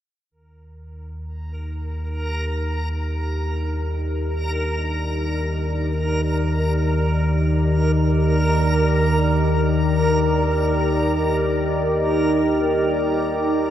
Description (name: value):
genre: dark ambient drone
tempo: free time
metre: none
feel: none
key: Eb major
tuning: A4 = 440 Hz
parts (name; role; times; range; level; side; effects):
- deep dark ambient pad; sustained chords; 1.6-13.7 s; Eb4 to D5; -23 LUFS; equal; chorus, built-in reverb
- deep rumbling drone; drone; 0.8-13.7 s; Eb2 to Eb3; -22 LUFS; equal; built-in reverb
- backwards swelling texture; texture; 1.6-13.7 s; Bb4; -26 LUFS; right 1 dB; built-in reverb
room: wet huge ambient reverb, RT60 9.0 s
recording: dark, warm production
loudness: -18 LUFS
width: side -10 dB against mid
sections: 0.3-13.7 A section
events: none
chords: 0.3 Eb